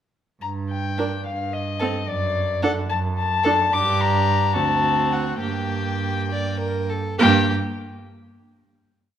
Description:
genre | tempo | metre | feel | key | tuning
quick classical-period movement for string quartet | 67-74 BPM (dotted quarters) | 6/8 | rubato | G minor | A4 = 439 Hz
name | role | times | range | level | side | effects
dark violin | melody | 0.4-7.5 s | D5 to D6 | -23 LUFS | left 5 dB | none
warm cello | bass | 0.4-7.5 s | D2 to G2 | -25 LUFS | right 3 dB | none
rich violin | second line | 1.0-7.5 s | F#4 to D5 | -28 LUFS | equal | none
warm viola | accompaniment | 1.0-7.5 s | Bb3 to D4 | -26 LUFS | right 5 dB | none
room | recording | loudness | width
wet recital hall reverb, RT60 1.6 s | none | -19 LUFS | side -9 dB against mid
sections
0.4-7.2 A section; 7.2-9.0 final chord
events
slowing down 2.9-7.2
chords
0.4 G5; 1.3 Am7b5/G (rootless); 2.1 D/F#; 3.7 Gm; 4.6 D7; 5.4 Gm

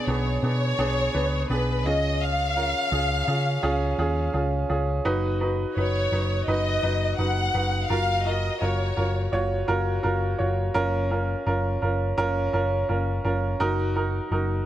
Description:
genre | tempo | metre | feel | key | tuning
piano-driven pop | 84 BPM | 4/4 | straight | F# major | A4 = 444 Hz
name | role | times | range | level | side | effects
warm studio violin section | melody | 0.0-9.3 s | B4 to F#5 | -27 LUFS | left 2 dB | none
clear upright piano | accompaniment | 0.0-14.7 s | B2 to C#5 | -26 LUFS | right 2 dB | none
hollow-body short-scale picked electric bass | bass | 0.1-14.6 s | F#1 to C#3 | -26 LUFS | equal | none
room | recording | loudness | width
light reverb, small room ambience | none | -22 LUFS | side -12 dB against mid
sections
0.0-5.1 A section; 5.1-14.7 B section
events
none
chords
0.0 Bm6; 1.9 C#; 5.1 B/F#; 7.9 F#maj7; 13.6 D#m/F#

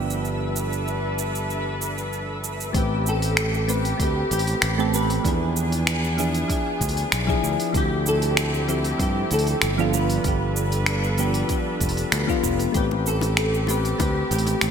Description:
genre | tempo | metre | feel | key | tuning
sunset chillout | 96 BPM | 4/4 | straight | A minor | A4 = 435 Hz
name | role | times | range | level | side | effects
soft electric-piano-like synth keys | accompaniment | 0.0-14.7 s | F3 to B4 | -27 LUFS | moving between left 9 dB and right 7 dB | chorus, auto-pan, digital delay, shimmer reverb
muted studio string section | sustained chords | 0.0-14.7 s | D3 to B4 | -30 LUFS | equal | vintage 12-bit sampler grit, shimmer reverb
overdriven fingered electric bass | bass | 0.0-14.7 s | F1 to G2 | -25 LUFS | equal | none
twinkling granular texture | texture | 0.0-2.8 s | E5 to E6 | -37 LUFS | right 1 dB | built-in reverb, analog chorus, shimmer reverb
deep house drum kit | drums | 0.1-14.7 s | cabasa, finger snaps, hi-hat | -26 LUFS | right 1 dB | none
electronic kick drum | drums | 2.7-14.1 s | none | -27 LUFS | equal | none
flamenco guitar | melody | 2.8-14.7 s | G4 to B4 | -28 LUFS | equal | ensemble chorus, digital delay, shimmer reverb
bongos | percussion | 12.9-14.6 s | none | -33 LUFS | left 6 dB | none
room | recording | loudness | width
moderate lush hall reverb, RT60 2.1 s | bright 1980s-style digital production | -20 LUFS | side -7 dB against mid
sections
0.0-2.7 A section; 2.7-14.7 B section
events
none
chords
0.0 G7; 2.7 Am9; 5.2 E7b9; 7.7 Dm11; 9.9 G7; 12.7 Am9

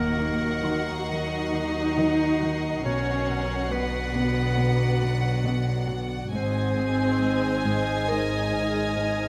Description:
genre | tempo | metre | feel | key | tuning
cinematic, suspense film score | 69 BPM | 4/4 | straight | unclear | A4 = 441 Hz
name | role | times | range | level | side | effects
clear studio violin section | melody | 0.0-9.3 s | Gb5 to Ab5 | -37 LUFS | equal | none
bright clarinet | second line | 0.0-9.3 s | Bb4 to Eb5 | -34 LUFS | equal | none
dark studio violin section | second line | 0.0-9.3 s | Gb4 to Eb5 | -40 LUFS | equal | none
dark studio viola section | accompaniment | 0.0-9.3 s | Bb3 to Eb4 | -31 LUFS | equal | none
ethereal airy pad | sustained chords | 0.0-9.3 s | Gb4 to F#5 | -40 LUFS | equal | none
mellow French horn section | sustained chords | 0.0-9.3 s | D3 to Eb4 | -37 LUFS | equal | none
dark studio cello section | bass | 0.0-9.3 s | Eb2 to B2 | -35 LUFS | equal | none
rich studio double bass section | bass | 0.0-9.3 s | Ab1 to Eb2 | -33 LUFS | equal | none
impact | sound effects | 0.0-2.8 s | none | -46 LUFS | equal | none
warm studio violin section | texture | 0.0-9.3 s | Bb5 to C7 | -41 LUFS | equal | none
warm studio cello section | riff | 0.2-9.3 s | Ab2 to Eb4 | -35 LUFS | equal | none
music box | texture | 0.6-9.3 s | Bb4 to Db6 | -39 LUFS | equal | none
room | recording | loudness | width
moderate scoring stage reverb, RT60 1.9 s | none | -25 LUFS | mono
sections
0.0-9.3 A section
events
impact 0.0-2.8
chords
0.0 Ebm; 2.8 Bm; 6.3 Ab

